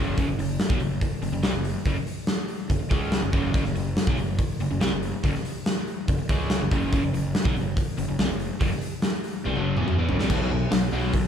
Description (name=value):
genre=classic rock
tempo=142 BPM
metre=4/4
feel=straight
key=unclear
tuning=A4 = 442 Hz
part: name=crunchy overdriven guitar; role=riff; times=0.0-11.3 s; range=F#2 to C#4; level=-28 LUFS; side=left 1 dB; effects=none
part: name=fuzz fingered electric bass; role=bass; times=0.0-11.3 s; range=F#1 to F#2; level=-30 LUFS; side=right 1 dB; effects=overdrive
part: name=big rock drum kit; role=drums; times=0.2-11.2 s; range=crash cymbal, hi-hat, kick drum, snare drum, toms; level=-25 LUFS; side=equal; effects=none
room=moderate large studio reverb, RT60 1.3 s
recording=band playing live in one room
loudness=-23 LUFS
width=side -8 dB against mid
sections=0.0-10.3 A section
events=drum fill 9.5-10.3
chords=0.0 F#5; 10.3 B5